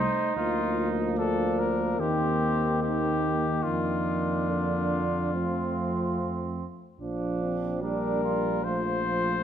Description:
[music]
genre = classical, brass quintet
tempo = 73 BPM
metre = 4/4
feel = straight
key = Bb major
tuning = A4 = 441 Hz
[part]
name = warm trumpet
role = melody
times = 0.0-9.4 s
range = F4 to C5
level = -30 LUFS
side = left 6 dB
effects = none
[part]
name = mellow trumpet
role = second line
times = 0.0-9.4 s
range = C4 to F4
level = -34 LUFS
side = right 6 dB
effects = none
[part]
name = clear trombone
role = accompaniment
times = 0.0-9.4 s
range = D3 to G3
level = -32 LUFS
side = right 3 dB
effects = none
[part]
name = mellow French horn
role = accompaniment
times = 0.0-9.4 s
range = A3 to D4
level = -33 LUFS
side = left 4 dB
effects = none
[part]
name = dark tuba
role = bass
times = 0.0-9.4 s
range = Bb1 to F2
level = -31 LUFS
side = right 3 dB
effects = none
[sound]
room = wet recital hall reverb, RT60 1.5 s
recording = none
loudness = -25 LUFS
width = side -9 dB against mid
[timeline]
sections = 0.0-7.0 A section; 7.0-9.4 B section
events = none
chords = 0.4 Bb/D; 2.0 Cm7/Eb; 3.7 Bb/F; 5.3 F; 7.0 Bb; 8.7 F/Bb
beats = | 0.37 1.18 2.00 2.83 | 3.65 4.49 5.33 6.17 | 7.00 7.83 8.65

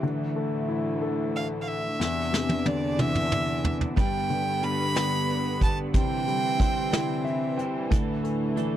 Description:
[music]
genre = six-eight pop ballad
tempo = 61 BPM (dotted quarters)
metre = 6/8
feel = straight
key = unclear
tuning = A4 = 440 Hz
[part]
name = clear grand piano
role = accompaniment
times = 0.0-8.8 s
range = E2 to G5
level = -29 LUFS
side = left 4 dB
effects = none
[part]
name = warm studio string section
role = sustained chords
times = 0.0-8.8 s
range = D2 to D4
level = -31 LUFS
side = right 2 dB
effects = none
[part]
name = clear violin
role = melody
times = 1.4-7.6 s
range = D5 to B5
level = -29 LUFS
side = right 2 dB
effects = none
[part]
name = vintage brush drum kit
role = drums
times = 2.0-8.7 s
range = hi-hat, kick drum, snare drum, toms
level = -25 LUFS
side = right 1 dB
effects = none
[part]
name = direct-recorded clean electric guitar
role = arpeggios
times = 4.0-8.8 s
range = C3 to C5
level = -35 LUFS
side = right 13 dB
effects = analog chorus
[sound]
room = little or no reverb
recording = dry, close 1970s-style studio recording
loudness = -24 LUFS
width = side -11 dB against mid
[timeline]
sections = 0.0-8.8 A section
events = drum fill 2.0-4.0; grand piano fill 6.9-7.9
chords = 0.0 Dsus2; 2.0 Cadd9/E; 4.0 G; 5.9 Cadd9; 7.9 Dsus2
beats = | 0.03 1.01 | 2.00 2.99 | 3.97 4.96 | 5.95 6.93 | 7.92

